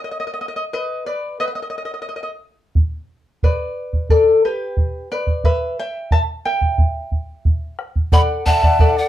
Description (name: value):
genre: andean folk, Andean ensemble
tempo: 89 BPM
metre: 4/4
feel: straight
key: unclear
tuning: A4 = 445 Hz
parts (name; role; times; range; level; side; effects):
- charango; accompaniment; 0.0-9.1 s; G4 to A5; -20 LUFS; left 2 dB; none
- bombo; percussion; 2.8-8.9 s; none; -16 LUFS; right 1 dB; none
- breathy pan flute; melody; 8.1-9.1 s; F#5 to B5; -19 LUFS; equal; none
- breathy mellow large quena; second line; 8.1-9.1 s; D5 to F#5; -27 LUFS; right 2 dB; none
room: moderate studio reverb, RT60 0.6 s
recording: dark, warm production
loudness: -17 LUFS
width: side -13 dB against mid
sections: 0.0-8.1 A section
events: charango solo 0.0-8.1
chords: 0.0 B; 2.8 G; 5.4 Em; 8.1 D